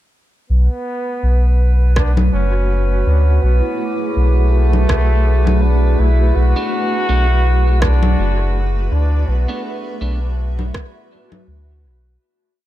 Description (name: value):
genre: ambient dub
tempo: 82 BPM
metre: 4/4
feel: swing 56% on 16ths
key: B dorian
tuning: A4 = 440 Hz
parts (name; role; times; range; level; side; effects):
- clear trombone; melody; 0.5-10.3 s; A3 to F#4; -24 LUFS; equal; dub echo
- granular cloud pad; sustained chords; 1.8-12.2 s; A3 to F#5; -26 LUFS; right 2 dB; built-in reverb
- warm sub bass; bass; 0.5-12.2 s; F#1 to D2; -14 LUFS; equal; none
- drifting glass-harmonics texture; texture; 0.8-12.2 s; B4; -29 LUFS; right 8 dB; chorus, built-in reverb
- electronic kick drum; drums; 2.0-10.9 s; none; -21 LUFS; equal; none
- electronic rim click and congas; drums; 2.0-11.4 s; none; -22 LUFS; left 1 dB; dub echo
- vibraphone with soft mallets; arpeggios; 2.5-12.5 s; E4 to D6; -28 LUFS; left 5 dB; low-pass filter, dub echo
- clean electric guitar; stabs; 6.6-10.2 s; A3 to D4; -30 LUFS; right 3 dB; dub echo
room: digital ambience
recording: none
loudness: -13 LUFS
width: side -14 dB against mid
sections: 0.5-12.2 groove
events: filter sweep on vibraphone 0.5-12.2; fade-out 8.3-12.2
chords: 0.5 Bm7